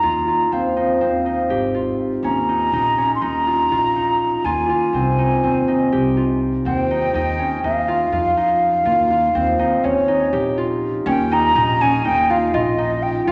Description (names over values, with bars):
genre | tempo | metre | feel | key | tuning
contemporary instrumental, chamber music in an uneven meter | 245 BPM (eighths) | 9/8 | straight | Eb mixolydian | A4 = 440 Hz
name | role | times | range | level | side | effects
breathy mellow concert flute | melody | 0.0-13.3 s | Db5 to C6 | -21 LUFS | equal | none
concert harp | arpeggios | 0.0-13.3 s | C4 to G4 | -23 LUFS | equal | none
upright bass | bass | 0.0-13.3 s | Ab1 to F2 | -28 LUFS | equal | none
room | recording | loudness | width
wet concert hall reverb, RT60 1.8 s | none | -19 LUFS | mono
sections
0.0-11.1 A section; 11.1-13.3 B section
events
none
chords
0.0 Ebsus2; 1.0 Ab6; 2.2 Eb5; 4.5 Fm7; 6.7 Eb7; 7.6 Ebsus2; 8.9 Cmadd11/Eb; 9.8 Ebsus2